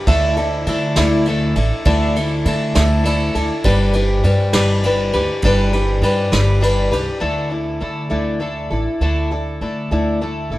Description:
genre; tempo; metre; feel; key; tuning
folk; 67 BPM (dotted quarters); 6/8; straight; unclear; A4 = 440 Hz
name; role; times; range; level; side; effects
picked twelve-string acoustic guitar; accompaniment; 0.0-10.6 s; D3 to B4; -18 LUFS; left 1 dB; none
upright bass; bass; 0.1-10.6 s; G1 to D3; -19 LUFS; equal; none
vintage brush drum kit; drums; 0.1-7.1 s; kick drum, ride cymbal, snare drum; -24 LUFS; equal; none
room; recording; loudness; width
light reverb; none; -15 LUFS; side -17 dB against mid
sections
0.0-7.2 A section; 7.2-10.6 B section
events
none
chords
0.1 Dsus2; 3.6 G; 7.2 Dsus2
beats
| 0.07 0.96 | 1.86 2.75 | 3.64 4.54 | 5.43 6.33 | 7.22 8.12 | 9.02 9.91

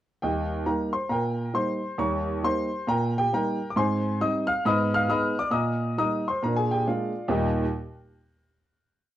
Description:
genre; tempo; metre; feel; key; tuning
jazz, stride piano; 136 BPM; 4/4; swing 60% on 8ths; Eb major; A4 = 445 Hz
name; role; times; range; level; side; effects
warm grand piano; solo; 0.2-7.6 s; Eb2 to F6; -23 LUFS; equal; none
room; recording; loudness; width
moderate studio reverb, RT60 0.8 s; worn, warbling old tape, cassette tape, warbly pitch drift; -24 LUFS; side -12 dB against mid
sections
0.2-7.3 A section; 7.3-9.1 final chord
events
none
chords
0.2 Eb; 2.0 Eb7; 3.7 Abmaj7; 4.6 Abm; 5.5 Eb/Bb; 6.4 Bb7; 7.3 Eb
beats
| 0.22 0.66 1.10 1.54 | 1.98 2.42 2.87 3.31 | 3.75 4.19 4.63 5.08 | 5.52 5.96 6.41 6.85 | 7.29

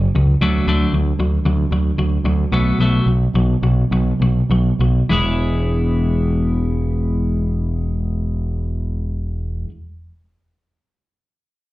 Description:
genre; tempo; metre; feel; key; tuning
rock; 97-116 BPM; 4/4; straight; E mixolydian; A4 = 441 Hz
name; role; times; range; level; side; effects
twelve-string electric guitar; riff; 0.0-9.7 s; F#2 to G#4; -20 LUFS; left 1 dB; none
growling fingered electric bass; bass; 0.0-9.6 s; E1 to D2; -18 LUFS; equal; overdrive
room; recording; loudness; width
light reverb; live gig heard through the venue's PA, club reverb; -16 LUFS; side -17 dB against mid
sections
0.0-5.1 A section; 5.1-10.0 B section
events
slowing down 0.7-5.1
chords
0.4 D; 2.5 B5; 5.1 E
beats
0.15 | 0.67 1.19 1.72 2.25 | 2.79 3.35 3.92 4.50 | 5.11 5.72 6.34 6.95 | 7.57 8.19 8.81 9.42

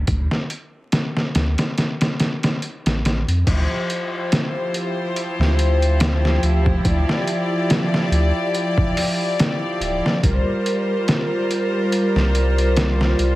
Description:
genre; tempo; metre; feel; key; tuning
trip hop; 71 BPM; 4/4; swing 55% on 16ths; D minor; A4 = 440 Hz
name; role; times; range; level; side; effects
warm sub bass; bass; 0.0-13.4 s; D1 to F2; -18 LUFS; equal; none
trip hop sampler-style drum kit; drums; 0.1-13.4 s; crash cymbal, hi-hat, kick drum, snare drum; -21 LUFS; equal; overdrive, small room ambience
rich studio string section; sustained chords; 3.5-13.4 s; F3 to D5; -21 LUFS; equal; none
room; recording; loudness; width
light reverb; heavily compressed radio sound, vinyl crackle; -17 LUFS; side -17 dB against mid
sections
0.0-3.5 A section; 3.5-13.4 B section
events
none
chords
0.0 Asus4; 3.5 Dm11; 10.2 C7sus4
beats
| 0.09 0.93 1.78 2.62 | 3.47 4.31 5.16 6.00 | 6.85 7.69 8.54 9.38 | 10.23 11.07 11.92 12.76

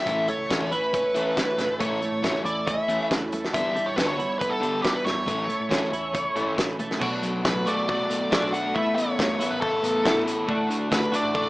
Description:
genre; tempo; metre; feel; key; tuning
indie rock; 138 BPM; 4/4; straight; unclear; A4 = 440 Hz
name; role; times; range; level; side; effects
nasal lead guitar with a parked wah; melody; 0.0-11.5 s; G4 to F#5; -26 LUFS; equal; overdrive
twelve-string electric guitar; riff; 0.0-11.5 s; G2 to F#4; -29 LUFS; right 2 dB; ensemble chorus
overdriven semi-hollow guitar; riff; 0.1-11.5 s; B2 to A4; -29 LUFS; left 2 dB; spring reverb
hollow-body short-scale picked electric bass; bass; 0.1-11.5 s; F#1 to B2; -41 LUFS; equal; none
loose indie drum kit; drums; 0.1-11.4 s; crash cymbal, hi-hat, kick drum, snare drum; -28 LUFS; equal; none
room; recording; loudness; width
wet small room reverb, RT60 0.6 s; rough home demo mix, small speaker sound; -22 LUFS; side -19 dB against mid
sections
0.0-7.0 A section; 7.0-11.5 B section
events
none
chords
0.1 A; 3.5 G6; 5.3 A; 7.0 Bm7; 8.7 Asus2; 10.5 D/A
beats
| 0.07 0.50 0.94 1.37 | 1.80 2.24 2.67 3.10 | 3.54 3.97 4.41 4.84 | 5.28 5.71 6.15 6.58 | 7.01 7.45 7.88 8.32 | 8.75 9.18 9.62 10.05 | 10.48 10.91 11.35

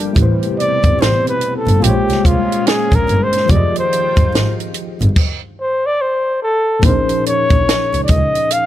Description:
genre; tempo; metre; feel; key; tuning
R&B, neo-soul; 72 BPM; 4/4; swing 62% on 16ths; unclear; A4 = 441 Hz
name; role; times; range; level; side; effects
breathy flugelhorn; melody; 0.0-8.7 s; D4 to F5; -16 LUFS; left 1 dB; none
tine electric piano; accompaniment; 0.0-8.7 s; Bb2 to Eb5; -21 LUFS; left 1 dB; overdrive, medium stereo tremolo
lush unison pad; sustained chords; 0.0-5.1 s; Bb2 to G5; -25 LUFS; left 1 dB; chorus
warm double bass; bass; 0.2-8.2 s; F1 to Db2; -17 LUFS; equal; none
compact cocktail drum kit; drums; 0.2-8.7 s; crash cymbal, hi-hat, kick drum, snare drum; -16 LUFS; equal; none
room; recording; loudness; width
little or no reverb; none; -12 LUFS; side -12 dB against mid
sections
0.0-6.8 A section; 6.8-8.7 B section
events
flugelhorn solo 0.0-6.8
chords
0.2 Am9; 1.8 Bbm9; 3.5 Fm9; 5.2 N.C.; 6.8 Bbm11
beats
| 0.16 1.00 1.83 2.66 | 3.50 4.33 5.16 6.00 | 6.83 7.66 8.50

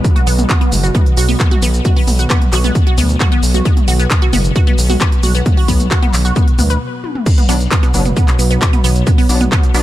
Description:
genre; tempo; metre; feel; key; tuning
driving peak-time techno; 133 BPM; 4/4; straight; B minor; A4 = 439 Hz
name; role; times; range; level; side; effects
analog drone; drone; 0.0-9.8 s; B2 to F#3; -24 LUFS; left 1 dB; chorus, sidechain pumping
electronic kick drum; drums; 0.0-9.6 s; none; -12 LUFS; equal; none
techno drum kit; drums; 0.0-9.8 s; crash cymbal, handclaps, hi-hat, shaker, toms; -19 LUFS; right 1 dB; sidechain pumping on hats, sidechain pumping on cymbals, sidechain pumping on toms, sidechain pumping on perc
resonant blip pluck; riff; 0.2-9.8 s; B3 to B4; -20 LUFS; right 1 dB; phaser, overdrive, sidechain pumping, ping-pong delay
gritty driven synth bass; bass; 0.3-9.8 s; F#1 to D2; -14 LUFS; equal; tube saturation, sidechain pumping
sync-sweep polysynth; stabs; 7.5-9.8 s; F#3 to D4; -23 LUFS; left 3 dB; chorus, sidechain pumping, digital delay
room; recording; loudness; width
little or no reverb; none; -10 LUFS; side -14 dB against mid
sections
0.0-7.3 A section; 7.3-9.8 B section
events
stop 6.8-7.3; drum fill 7.0; drop 7.3-9.8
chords
0.0 B5; 7.3 Bm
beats
| 0.04 0.50 0.95 1.40 | 1.85 2.30 2.75 3.20 | 3.65 4.11 4.56 5.01 | 5.46 5.91 6.36 6.81 | 7.26 7.71 8.16 8.62 | 9.07 9.52

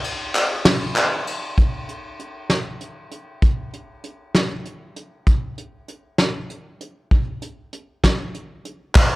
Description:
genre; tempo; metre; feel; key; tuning
folk; 65 BPM (dotted quarters); 6/8; straight; none; none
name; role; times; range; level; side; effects
soft brush drum kit; drums; 0.0-9.1 s; crash cymbal, hi-hat, kick drum, ride cymbal, snare drum; -18 LUFS; equal; none
group handclap; percussion; 0.4-1.1, 9.0-9.1 s; none; -21 LUFS; equal; none
room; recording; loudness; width
light reverb; worn, warbling old tape, cassette tape, warbly pitch drift; -19 LUFS; side -20 dB against mid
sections
0.0-1.6 A section; 1.6-9.0 B section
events
none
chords
none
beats
0.66 | 1.58 2.50 | 3.42 4.35 | 5.27 6.19 | 7.12 8.04 | 8.96

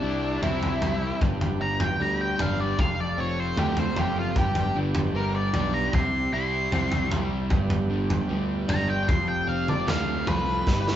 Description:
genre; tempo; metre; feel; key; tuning
psychedelic rock; 76 BPM; 4/4; straight; G mixolydian; A4 = 438 Hz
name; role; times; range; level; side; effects
octave-fuzz lead guitar; melody; 0.0-11.0 s; D4 to C6; -28 LUFS; equal; distortion
combo organ; sustained chords; 0.0-11.0 s; F3 to G4; -36 LUFS; right 2 dB; none
overdriven semi-hollow guitar; riff; 0.0-11.0 s; F2 to E4; -29 LUFS; equal; none
picked electric bass; bass; 0.0-11.0 s; F1 to D2; -30 LUFS; equal; none
pedal harmonium; drone; 0.0-11.0 s; G3; -40 LUFS; right 2 dB; none
crunchy breakbeat drum kit; drums; 0.4-11.0 s; kick drum, snare drum, toms; -27 LUFS; equal; none
room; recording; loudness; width
moderate large studio reverb, RT60 1.2 s; band playing live in one room, nothing above 7.7 kHz; -23 LUFS; side -11 dB against mid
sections
0.0-11.0 A section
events
lead electric guitar solo 0.0-11.0; drum fill 10.7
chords
0.0 C; 1.2 G; 2.8 F; 4.4 G; 5.9 C; 7.5 G; 9.1 F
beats
0.42 1.21 1.99 | 2.78 3.57 4.36 5.14 | 5.93 6.72 7.51 8.30 | 9.09 9.88 10.67

